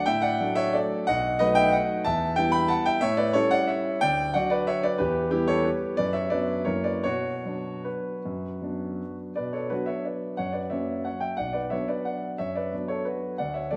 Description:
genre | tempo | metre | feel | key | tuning
classical, piano waltz | 146-196 BPM | 3/4 | rubato | B minor | A4 = 440 Hz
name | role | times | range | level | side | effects
warm concert grand piano | solo | 0.0-13.8 s | B1 to B5 | -26 LUFS | equal | none
room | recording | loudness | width
moderate concert hall reverb, RT60 1.9 s | none | -26 LUFS | mono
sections
0.0-9.4 A section; 9.4-13.8 B section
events
none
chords
0.0 D; 1.1 B7; 2.1 Em; 3.0 A7; 4.0 D; 5.0 Em; 6.0 Bm/F#; 6.7 F#7; 7.1 Bm; 10.4 F#7; 11.4 Bm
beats
| 0.08 0.41 0.74 | 1.08 1.40 1.74 | 2.06 2.38 2.70 | 3.02 3.35 3.69 | 4.02 4.35 4.68 | 5.00 5.33 5.66 | 5.99 6.32 6.67 | 7.05 7.45 7.86 | 8.25 8.62 9.00 | 9.37 9.71 10.06 | 10.39 10.72 11.06 | 11.39 11.72 12.07 | 12.40 12.73 13.06 | 13.39 13.72

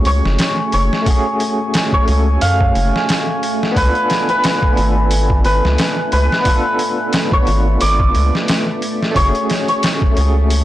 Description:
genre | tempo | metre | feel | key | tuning
trip hop | 89 BPM | 4/4 | swing 56% on 16ths | F# harmonic minor | A4 = 441 Hz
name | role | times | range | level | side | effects
santur | melody | 0.0-10.6 s | B4 to E#5 | -19 LUFS | equal | vintage 12-bit sampler grit, tape echo
bell-like tine electric piano | accompaniment | 0.0-10.6 s | A3 to B4 | -22 LUFS | equal | medium stereo tremolo
deep dark ambient pad | sustained chords | 0.1-10.6 s | A3 to G#5 | -24 LUFS | equal | chorus, built-in reverb
round analog bass | bass | 0.0-10.6 s | F#1 to F#2 | -15 LUFS | equal | none
bowed-like drone | texture | 0.6-10.6 s | A3 | -31 LUFS | right 1 dB | none
trip hop sampler-style drum kit | drums | 0.1-10.6 s | hi-hat, kick drum, snare drum | -18 LUFS | equal | none
room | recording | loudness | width
little or no reverb | blown-out, overdriven recording, overdrive | -13 LUFS | side -14 dB against mid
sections
0.0-10.6 A section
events
none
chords
0.0 F#madd9; 3.8 C#7b9b13; 9.2 F#madd9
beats
0.39 | 1.06 1.74 2.41 3.08 | 3.76 4.43 5.11 5.78 | 6.46 7.13 7.80 8.48 | 9.15 9.83 10.50

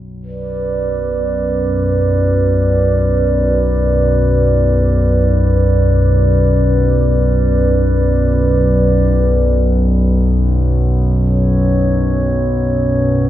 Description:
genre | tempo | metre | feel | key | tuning
world meditative, free-time meditation music | free time | none | none | B minor | A4 = 441 Hz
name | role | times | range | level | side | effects
analog drone | drone | 0.2-13.3 s | B1 to F#2 | -13 LUFS | equal | chorus
glass harmonica | texture | 0.2-13.3 s | B4 to D5 | -18 LUFS | right 2 dB | none
room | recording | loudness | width
moderate lush hall reverb, RT60 1.9 s | dark, warm production | -12 LUFS | side -12 dB against mid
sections
0.0-13.3 A section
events
none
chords
none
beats
free time

